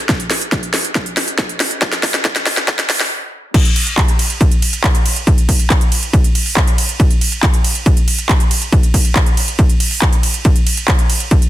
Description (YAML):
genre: trance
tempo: 139 BPM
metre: 4/4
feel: straight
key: none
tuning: none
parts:
  - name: electronic kick drum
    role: drums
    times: 0.1-11.4 s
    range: none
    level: -13 LUFS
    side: equal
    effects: none
  - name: techno drum kit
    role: drums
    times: 0.1-11.5 s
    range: crash cymbal, handclaps, hi-hat, ride cymbal, snare drum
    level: -17 LUFS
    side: right 1 dB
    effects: none
room: little or no reverb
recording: dense, heavily limited modern master, high-pass filter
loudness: -12 LUFS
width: side -14 dB against mid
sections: 0.0-3.5 A section; 3.5-11.5 B section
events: build-up 0.0-3.5; drum fill 0.0-3.1; stop 3.1-3.5; drop 3.5-11.5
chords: none